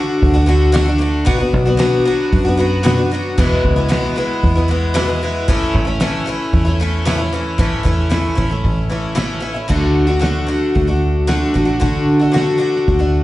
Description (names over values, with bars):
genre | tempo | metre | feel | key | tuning
folk rock and heartland rock | 114 BPM | 4/4 | straight | D lydian | A4 = 440 Hz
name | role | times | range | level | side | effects
picked twelve-string acoustic guitar | accompaniment | 0.0-13.2 s | E2 to F#4 | -16 LUFS | left 1 dB | slapback echo
fingered electric bass | bass | 0.2-13.2 s | A1 to D3 | -17 LUFS | right 1 dB | none
cloth-damped thuddy drum kit | drums | 0.2-13.0 s | crash cymbal, hi-hat, kick drum, snare drum | -19 LUFS | equal | none
room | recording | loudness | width
light reverb | live gig heard through the venue's PA, club reverb, nothing above 10.9 kHz | -13 LUFS | side -16 dB against mid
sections
0.0-7.6 A section; 7.6-9.7 B section; 9.7-13.2 C section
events
none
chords
0.0 D; 1.3 Bm; 3.4 E; 5.5 A; 9.7 D